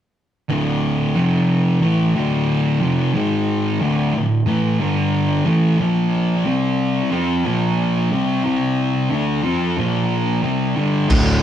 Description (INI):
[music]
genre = stoner and doom metal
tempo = 91 BPM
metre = 4/4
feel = straight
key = D minor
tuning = A4 = 440 Hz
[part]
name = fuzz guitar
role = riff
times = 0.5-11.4 s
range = D2 to F4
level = -20 LUFS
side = right 5 dB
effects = distortion
[part]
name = thick fuzz guitar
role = riff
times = 0.5-11.4 s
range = D2 to F4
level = -18 LUFS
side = left 3 dB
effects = distortion
[part]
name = fuzz fingered electric bass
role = bass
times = 11.1-11.4 s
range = D1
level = -19 LUFS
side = equal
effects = overdrive
[part]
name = raw garage drum kit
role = drums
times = 11.1-11.3 s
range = crash cymbal, kick drum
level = -16 LUFS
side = equal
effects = none
[sound]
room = moderate studio reverb, RT60 0.6 s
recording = rough rehearsal-room recording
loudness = -16 LUFS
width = side -10 dB against mid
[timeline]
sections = 0.5-11.1 A section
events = none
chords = 0.5 D5; 1.2 F5; 1.8 Dm; 3.1 G#5; 3.8 D5; 4.8 G5; 5.5 A5; 5.8 Bb5; 6.5 C5; 7.1 Bb5; 8.4 C5; 9.1 Bb5; 11.1 D5